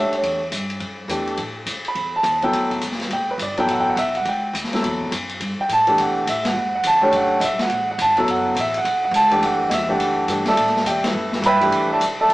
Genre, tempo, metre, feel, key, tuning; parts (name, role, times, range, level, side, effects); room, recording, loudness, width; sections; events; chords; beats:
modal jazz; 209 BPM; 4/4; swing 62% on 8ths; B minor; A4 = 440 Hz
warm concert grand piano; accompaniment; 0.0-12.3 s; E3 to B5; -18 LUFS; right 1 dB
upright bass; bass; 0.0-12.3 s; F#1 to B2; -32 LUFS; equal
open jazz drum kit; drums; 0.1-12.3 s; hi-hat, kick drum, ride cymbal, snare drum; -26 LUFS; left 1 dB
wet stone room reverb, RT60 1.3 s; band playing live in one room, small speaker sound; -18 LUFS; side -18 dB against mid
0.0-12.3 A section
0.0 B9sus4 (rootless); 1.4 A9sus4; 6.0 B9sus4; 10.6 A9sus4
| 0.23 0.52 0.81 1.10 | 1.38 1.67 1.96 2.25 | 2.53 2.82 3.11 3.40 | 3.68 3.97 4.26 4.54 | 4.83 5.12 5.41 5.69 | 5.98 6.26 6.55 6.84 | 7.12 7.41 7.70 7.99 | 8.27 8.56 8.85 9.13 | 9.42 9.71 9.99 10.28 | 10.57 10.86 11.14 11.43 | 11.72 12.01 12.29